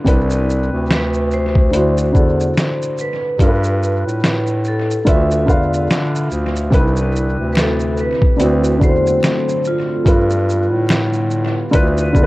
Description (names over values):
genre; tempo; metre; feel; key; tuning
lo-fi hip hop; 72 BPM; 4/4; swing 59% on 16ths; D dorian; A4 = 439 Hz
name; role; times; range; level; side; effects
felt-muted upright piano; accompaniment; 0.0-12.3 s; C3 to F5; -19 LUFS; equal; low-pass filter
warm bass clarinet; bass; 0.1-12.3 s; C2 to D3; -19 LUFS; equal; none
lo-fi sampler-style drum kit; drums; 0.1-12.3 s; hi-hat, kick drum, shaker, snare drum; -17 LUFS; equal; vintage 12-bit sampler grit
vibraphone with medium hard mallets; melody; 0.9-10.9 s; F4 to C5; -21 LUFS; equal; low-pass filter, tape echo
warbly tape-like pad; sustained chords; 7.4-12.3 s; D3 to E5; -26 LUFS; left 2 dB; chorus, built-in reverb, low-pass filter
finger snaps; percussion; 7.6-11.1 s; none; -35 LUFS; left 2 dB; none
room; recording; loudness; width
light reverb, small room ambience; echo-heavy mix, cassette tape; -14 LUFS; side -19 dB against mid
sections
0.0-6.7 A section; 6.7-12.3 A section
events
none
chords
0.1 Cmaj9; 1.7 D7; 3.4 G7; 5.1 Dm69; 6.7 Cmaj9; 8.4 D7; 10.1 G7; 11.7 Dm69